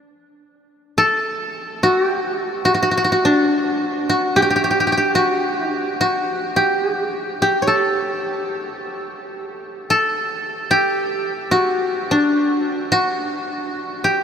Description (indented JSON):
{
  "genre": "japanese traditional",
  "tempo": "54 BPM",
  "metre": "4/4",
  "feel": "rubato",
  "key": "D ryukyu",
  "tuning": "A4 = 439 Hz",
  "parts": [
    { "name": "koto", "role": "solo", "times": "1.0-14.2 s", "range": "D4 to C#5", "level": "-17 LUFS", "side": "equal", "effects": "none" }
  ],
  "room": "wet huge ambient reverb, RT60 8.7 s",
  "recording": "in a vast, echoing space",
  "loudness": "-17 LUFS",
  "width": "side -7 dB against mid",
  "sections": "1.0-14.2 A section",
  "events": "none",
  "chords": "none"
}